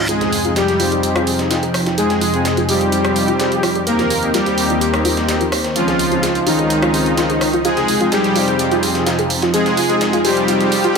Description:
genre	progressive house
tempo	127 BPM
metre	4/4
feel	straight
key	F minor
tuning	A4 = 440 Hz
part	warm analog pad	sustained chords	0.0-11.0 s	Db2 to G5	-22 LUFS	right 1 dB	chorus, vintage 12-bit sampler grit
part	soft round pluck	arpeggios	0.0-11.0 s	F4 to Ab4	-23 LUFS	equal	analog chorus, tape echo
part	reverse cymbal and riser	sound effects	0.0-0.1, 9.3-11.0 s	none	-31 LUFS	right 1 dB	none
part	soft supersaw	melody	0.1-11.0 s	Eb3 to Bb4	-18 LUFS	equal	ping-pong delay
part	soft synth bell	second line	0.1-11.0 s	Eb4 to Bb4	-28 LUFS	left 3 dB	none
part	soft supersaw	stabs	0.1-11.0 s	Ab3 to C5	-21 LUFS	left 2 dB	low-pass filter, tape echo
part	dusty soul sampler-style drum kit	drums	0.1-11.0 s	hi-hat, snare drum	-27 LUFS	equal	high-pass filter on hats, high-pass filter on snare, high-pass filter on room
part	house drum kit	drums	0.1-11.0 s	hi-hat, rim click	-24 LUFS	right 2 dB	high-pass filter on hats, high-pass filter on snare, high-pass filter on room
room	moderate huge ambient reverb, RT60 6.8 s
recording	high-pass filter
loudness	-14 LUFS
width	side -5 dB against mid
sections	0.1-11.0 A section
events	build-up 0.1-11.0; filter sweep on synth pluck 0.1-11.0; filter sweep on supersaw synth 0.1-11.0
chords	0.1 Fm7; 3.9 Cm7/Eb; 5.8 Dbmaj7; 7.6 Fm7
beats	| 0.09 0.56 1.03 1.51 | 1.98 2.45 2.92 3.40 | 3.87 4.34 4.81 5.29 | 5.76 6.23 6.70 7.17 | 7.65 8.12 8.59 9.06 | 9.54 10.01 10.48 10.96

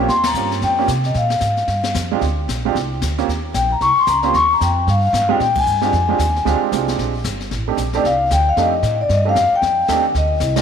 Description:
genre	jazz, small-group swing and bop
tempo	227 BPM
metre	4/4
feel	swing 60% on 8ths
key	Bb mixolydian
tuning	A4 = 441 Hz
part	vibraphone with soft mallets	melody	0.0-10.6 s	D5 to Db6	-17 LUFS	left 3 dB	none
part	warm grand piano	accompaniment	0.0-10.6 s	Ab3 to G4	-22 LUFS	right 12 dB	none
part	upright bass	bass	0.0-10.6 s	G1 to C3	-21 LUFS	right 1 dB	none
part	jazz brush drum kit	drums	0.1-10.6 s	brushed snare drum, crash cymbal, hi-hat, kick drum, ride cymbal, snare drum	-27 LUFS	left 6 dB	none
room	moderate echo chamber reverb, RT60 1.9 s, studio reverb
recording	1960s-style stereo with parts hard left and right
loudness	-15 LUFS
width	side -7 dB against mid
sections	0.0-10.6 A section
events	band accent 0.2, 5.5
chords	0.1 Eb13; 1.1 Bb13; 3.3 Eb13; 5.4 Bb13; 7.5 F13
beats	| 0.09 0.35 0.62 0.88 | 1.15 1.41 1.68 1.95 | 2.21 2.48 2.74 3.01 | 3.27 3.54 3.80 4.07 | 4.33 4.60 4.86 5.13 | 5.39 5.66 5.92 6.18 | 6.45 6.71 6.97 7.24 | 7.50 7.77 8.03 8.29 | 8.56 8.82 9.09 9.35 | 9.61 9.88 10.14 10.40

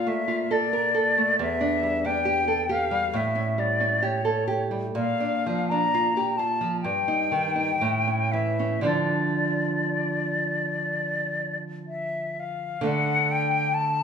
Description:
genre	romantic duo for flute and classical guitar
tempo	56-70 BPM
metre	4/4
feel	rubato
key	D minor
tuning	A4 = 440 Hz
part	bright silver concert flute	melody	0.0-14.0 s	C#5 to Bb5	-25 LUFS	left 3 dB	none
part	nylon-string guitar	accompaniment	0.0-14.0 s	E2 to Bb4	-26 LUFS	right 2 dB	none
room	wet large studio reverb, RT60 1.2 s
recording	band playing live in one room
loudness	-22 LUFS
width	side -6 dB against mid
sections	0.0-12.9 A section; 12.9-14.0 B section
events	none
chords	0.0 Bbmaj7; 1.4 Em7; 3.1 A7; 4.9 Bb; 6.8 Eb/G; 7.8 A7; 8.9 Dm; 12.9 D5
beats	0.51 | 1.39 2.26 3.14 4.03 | 4.94 5.93 6.83 7.80 | 8.86 9.88 10.89 11.88 | 12.87 13.74

